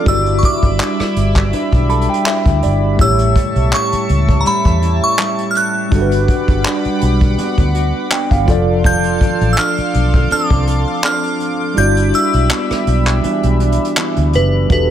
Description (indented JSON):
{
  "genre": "contemporary R&B",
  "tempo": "82 BPM",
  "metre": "4/4",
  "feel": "swing 54% on 16ths",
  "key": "E dorian",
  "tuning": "A4 = 443 Hz",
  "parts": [
    { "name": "glassy synth bell", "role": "melody", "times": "0.0-14.9 s", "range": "B4 to G6", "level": "-19 LUFS", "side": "equal", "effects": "chorus, ping-pong delay" },
    { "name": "tine electric piano", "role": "accompaniment", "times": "0.0-14.9 s", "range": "E3 to B5", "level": "-20 LUFS", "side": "equal", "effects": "medium stereo tremolo" },
    { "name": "chorused pulse-width pad", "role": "sustained chords", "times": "0.0-14.9 s", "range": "G3 to D6", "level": "-23 LUFS", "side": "right 1 dB", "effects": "none" },
    { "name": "mellow electric guitar", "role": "arpeggios", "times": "0.0-14.9 s", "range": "A2 to B4", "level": "-22 LUFS", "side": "right 1 dB", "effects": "spring reverb, ping-pong delay" },
    { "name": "vintage muted fingered electric bass", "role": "bass", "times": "0.1-14.9 s", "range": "E1 to E2", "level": "-16 LUFS", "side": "equal", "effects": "none" },
    { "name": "vintage brush drum kit", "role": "drums", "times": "0.1-14.9 s", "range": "handclaps, hi-hat, kick drum, rim click", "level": "-17 LUFS", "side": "equal", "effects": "none" }
  ],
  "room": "small room ambience",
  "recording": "none",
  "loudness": "-12 LUFS",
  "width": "side -10 dB against mid",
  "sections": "0.0-14.7 A section",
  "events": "tine electric piano fill 1.5-3.0, 7.7-8.8; kick muted 11.8-14.7",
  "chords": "0.1 Em7/G; 3.0 A7; 5.9 Gmaj7; 8.5 F6; 11.8 Em7/G"
}